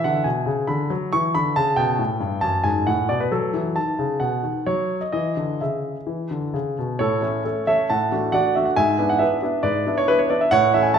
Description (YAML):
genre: classical-period piano sonatina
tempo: 136 BPM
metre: 4/4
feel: rubato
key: unclear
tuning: A4 = 440 Hz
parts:
  - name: warm concert grand piano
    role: solo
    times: 0.0-11.0 s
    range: F#2 to C#6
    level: -19 LUFS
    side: equal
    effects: none
room: wet recital hall reverb, RT60 1.5 s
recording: minimal, uncompressed stereo recording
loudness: -19 LUFS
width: side -7 dB against mid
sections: 0.0-7.0 A section; 7.0-11.0 B section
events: none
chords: 0.0 E7; 1.6 A7; 2.4 F#madd9; 3.3 B7; 5.1 C#madd9; 6.1 E5; 7.0 A; 7.9 D/A; 8.8 E7/G#